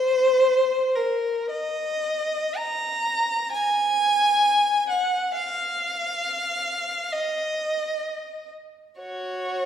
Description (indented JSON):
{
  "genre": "classical, free, expressive piece for unaccompanied violin",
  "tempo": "52-70 BPM",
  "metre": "4/4",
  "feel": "rubato",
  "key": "Eb minor",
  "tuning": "A4 = 439 Hz",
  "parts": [
    { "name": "rich violin", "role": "solo", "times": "0.0-9.7 s", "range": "Gb4 to Bb5", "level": "-22 LUFS", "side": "equal", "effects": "none" }
  ],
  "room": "wet scoring stage reverb, RT60 1.6 s",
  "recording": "heard from further back in the room",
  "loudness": "-21 LUFS",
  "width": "side -9 dB against mid",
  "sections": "0.0-9.7 A section",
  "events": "none",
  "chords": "none"
}